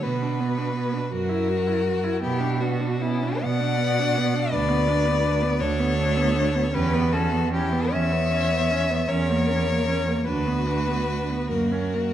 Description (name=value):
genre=classical, slow romantic movement for string quartet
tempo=45-56 BPM (dotted quarters)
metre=6/8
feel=rubato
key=B minor from 4.5 s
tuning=A4 = 440 Hz
part: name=clear violin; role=melody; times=0.0-12.1 s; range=C#4 to D5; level=-31 LUFS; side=left 9 dB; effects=none
part: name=rich violin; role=second line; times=0.0-12.1 s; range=E4 to F#5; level=-26 LUFS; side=left 3 dB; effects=none
part: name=rich viola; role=accompaniment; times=0.0-12.1 s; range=A#3 to F#4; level=-28 LUFS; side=right 2 dB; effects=none
part: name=rich cello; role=bass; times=0.0-12.1 s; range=D2 to B2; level=-25 LUFS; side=right 3 dB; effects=none
room=moderate recital hall reverb, RT60 1.4 s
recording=dark, warm production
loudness=-21 LUFS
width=side -11 dB against mid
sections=0.0-12.1 A section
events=none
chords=0.0 Bm; 1.1 F#7; 2.2 Bm; 4.5 Bm/D; 6.7 Em6; 9.1 A#dim/E; 10.3 Bm/D; 11.5 F#